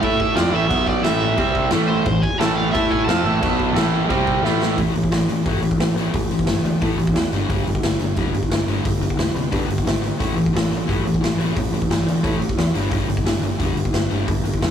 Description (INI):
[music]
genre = punk rock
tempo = 177 BPM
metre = 4/4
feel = straight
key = A minor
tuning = A4 = 440 Hz
[part]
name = cranked stack guitar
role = melody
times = 0.0-4.4 s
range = C5 to A5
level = -24 LUFS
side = right 2 dB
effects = overdrive
[part]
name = crunchy overdriven guitar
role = riff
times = 0.0-4.8 s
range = A2 to A4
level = -21 LUFS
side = right 5 dB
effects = none
[part]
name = heavy high-gain guitar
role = riff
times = 0.0-4.8 s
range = A2 to A4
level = -30 LUFS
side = equal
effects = none
[part]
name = raw garage guitar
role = riff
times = 0.0-14.7 s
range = G2 to A4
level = -23 LUFS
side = left 2 dB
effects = overdrive
[part]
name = picked electric bass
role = bass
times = 0.0-14.7 s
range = F1 to A2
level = -24 LUFS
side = equal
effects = none
[part]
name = raw garage drum kit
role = drums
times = 0.0-14.7 s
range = crash cymbal, hi-hat, kick drum, snare drum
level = -22 LUFS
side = equal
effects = none
[sound]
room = light reverb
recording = rough rehearsal-room recording, tube saturation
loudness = -17 LUFS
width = side -8 dB against mid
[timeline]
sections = 0.0-4.8 A section; 4.8-14.7 B section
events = drum fill 4.4-4.8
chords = 0.0 Am; 0.7 B5; 1.0 A5; 1.4 C5; 1.7 Am; 3.4 B5; 3.8 A5; 4.1 C5; 4.4 A5; 7.3 G5; 10.2 A5; 12.7 G5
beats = 0.02 0.36 | 0.70 1.04 1.38 1.72 | 2.06 2.40 2.74 3.08 | 3.41 3.75 4.09 4.43 | 4.77 5.11 5.45 5.79 | 6.13 6.47 6.80 7.14 | 7.48 7.82 8.16 8.50 | 8.84 9.18 9.52 9.86 | 10.20 10.54 10.88 11.22 | 11.56 11.90 12.24 12.58 | 12.92 13.26 13.60 13.94 | 14.28 14.62